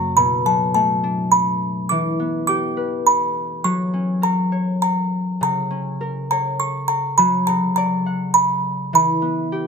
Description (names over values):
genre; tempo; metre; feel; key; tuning
children's music, lullaby; 103 BPM; 3/4; straight; unclear; A4 = 436 Hz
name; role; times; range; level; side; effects
music box; melody; 0.0-9.7 s; A5 to D6; -19 LUFS; right 1 dB; none
concert harp; accompaniment; 0.0-9.7 s; F#2 to F#5; -22 LUFS; left 2 dB; none
room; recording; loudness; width
moderate studio reverb, RT60 0.5 s; none; -17 LUFS; side -5 dB against mid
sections
0.0-9.7 A section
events
none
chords
0.2 Bm7; 1.9 Em7; 3.6 F#; 7.2 Dmaj7#5/C#; 8.9 Em